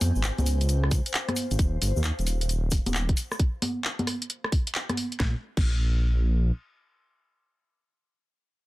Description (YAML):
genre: UK garage, two-step garage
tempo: 133 BPM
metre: 4/4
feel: swing 65% on 16ths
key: unclear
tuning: A4 = 439 Hz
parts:
  - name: dark detuned saw bass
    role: bass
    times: 0.0-6.5 s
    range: Eb1 to F2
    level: -24 LUFS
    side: equal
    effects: none
  - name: garage drum kit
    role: drums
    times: 0.0-5.7 s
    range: congas, crash cymbal, handclaps, hi-hat, rim click, snare drum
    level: -29 LUFS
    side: equal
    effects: none
  - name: egg shaker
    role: percussion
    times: 0.0-3.4 s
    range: none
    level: -38 LUFS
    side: left 4 dB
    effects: none
  - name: granular cloud pad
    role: texture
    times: 0.0-1.6 s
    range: C5 to Ab5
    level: -38 LUFS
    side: left 3 dB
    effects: built-in reverb, sidechain pumping
  - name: electronic kick drum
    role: drums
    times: 0.9-5.7 s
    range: none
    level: -25 LUFS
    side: equal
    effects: none
room: digital ambience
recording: dense, heavily limited modern master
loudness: -24 LUFS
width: side -19 dB against mid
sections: 0.0-5.2 A section; 5.2-8.7 B section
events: drop 0.0-5.2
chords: 0.0 Dbmaj7; 1.6 N.C.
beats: 0.24 0.69 1.14 | 1.59 2.04 2.49 2.94 | 3.40 3.85 4.30 4.75 | 5.20 5.65 6.10